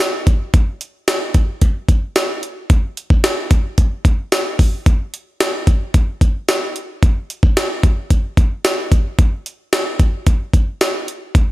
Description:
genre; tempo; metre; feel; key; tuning
pop; 111 BPM; 4/4; straight; none; none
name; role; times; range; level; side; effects
jungle sampler-style drum kit; drums; 0.0-11.5 s; hi-hat, kick drum, snare drum, tambourine; -14 LUFS; equal; gated reverb
room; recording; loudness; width
little or no reverb; none; -14 LUFS; side -18 dB against mid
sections
0.0-11.5 A section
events
none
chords
none

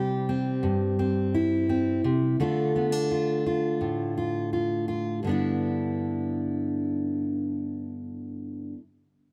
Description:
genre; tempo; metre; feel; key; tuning
folk; 85 BPM; 4/4; straight; G mixolydian; A4 = 438 Hz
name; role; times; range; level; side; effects
fingerpicked steel-string acoustic guitar; accompaniment; 0.0-8.8 s; G2 to G4; -27 LUFS; equal; none
room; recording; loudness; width
light reverb; none; -27 LUFS; mono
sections
0.0-5.2 A section; 5.2-8.1 B section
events
none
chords
0.0 C; 2.4 Dm; 5.2 G6

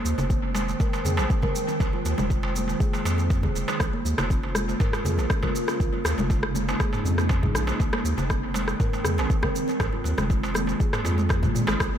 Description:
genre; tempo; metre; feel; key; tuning
afro house; 120 BPM; 4/4; straight; unclear; A4 = 440 Hz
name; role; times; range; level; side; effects
ethereal airy pad; sustained chords; 0.0-12.0 s; Db3 to G5; -32 LUFS; right 1 dB; ensemble chorus, built-in reverb, sidechain pumping
kalimba; arpeggios; 0.0-12.0 s; Ab3 to Bb4; -30 LUFS; right 1 dB; sidechain pumping, analog delay
round analog bass; bass; 0.0-11.9 s; F1 to Bb2; -27 LUFS; equal; sidechain pumping
congas; percussion; 0.0-11.8 s; none; -34 LUFS; left 1 dB; none
afro-pop drum kit; drums; 0.1-11.9 s; rim click, shaker, toms; -31 LUFS; equal; none
darbuka; percussion; 0.2-11.9 s; none; -33 LUFS; right 2 dB; analog delay
electronic kick drum; drums; 0.3-11.9 s; none; -25 LUFS; equal; none
room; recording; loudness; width
light reverb, small room ambience; echo-heavy mix; -22 LUFS; side -9 dB against mid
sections
0.0-12.0 A section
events
none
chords
0.0 Abmaj7; 3.8 Bbm7; 7.8 Abmaj7

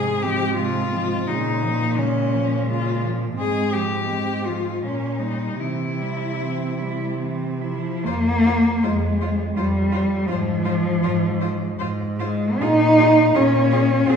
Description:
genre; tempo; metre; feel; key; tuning
classical, lyrical piece for cello ensemble; 65-89 BPM; 3/4; rubato; F minor; A4 = 440 Hz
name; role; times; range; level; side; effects
rich cello; melody; 0.0-14.2 s; Db4 to C5; -27 LUFS; left 4 dB; none
rich cello; second line; 0.0-14.1 s; Ab3 to F4; -31 LUFS; right 4 dB; none
warm cello; accompaniment; 0.0-14.2 s; C3 to Eb4; -21 LUFS; left 1 dB; none
rich cello; bass; 0.0-14.2 s; F2 to C3; -25 LUFS; right 1 dB; none
room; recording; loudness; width
wet recital hall reverb, RT60 1.4 s; heard from further back in the room, nothing above 10.3 kHz; -19 LUFS; side -7 dB against mid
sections
0.0-8.1 A section; 8.1-14.2 B section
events
none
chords
0.0 Fm/Ab; 1.3 Bbm7; 3.4 Fm/Ab; 4.8 Gdim/Bb; 5.6 C; 8.1 Fm; 10.3 Fm/Ab; 12.6 Bbm7

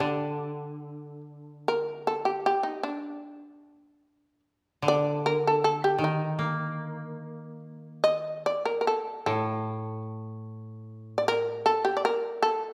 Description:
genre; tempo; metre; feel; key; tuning
japanese traditional, Japanese chamber music; 75 BPM; 2/4; uneven beats, rubato; D miyako bushi; A4 = 441 Hz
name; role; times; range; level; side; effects
shamisen; melody; 0.0-12.7 s; D4 to Eb5; -28 LUFS; equal; none
koto; accompaniment; 0.0-11.6 s; A2 to Bb3; -35 LUFS; equal; none
room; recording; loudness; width
wet recital hall reverb, RT60 1.6 s; none; -28 LUFS; mono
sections
0.0-1.7 A section; 1.7-12.7 B section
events
none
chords
none

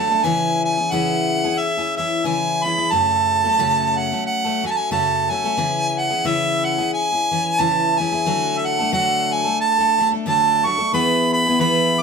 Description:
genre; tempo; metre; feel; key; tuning
acoustic folk duo or small band; 90 BPM; 4/4; swing 59% on 8ths; unclear; A4 = 444 Hz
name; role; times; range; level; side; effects
clear harmonica; melody; 0.0-12.0 s; E5 to C#6; -18 LUFS; right 3 dB; none
picked steel-string acoustic guitar; accompaniment; 0.0-12.0 s; F#2 to A4; -22 LUFS; left 3 dB; none
room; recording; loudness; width
moderate studio reverb, RT60 0.9 s; band playing live in one room; -17 LUFS; side -5 dB against mid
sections
0.0-12.0 A section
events
none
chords
0.2 C#m; 2.9 F#m; 5.6 C#m; 8.3 D; 10.9 E

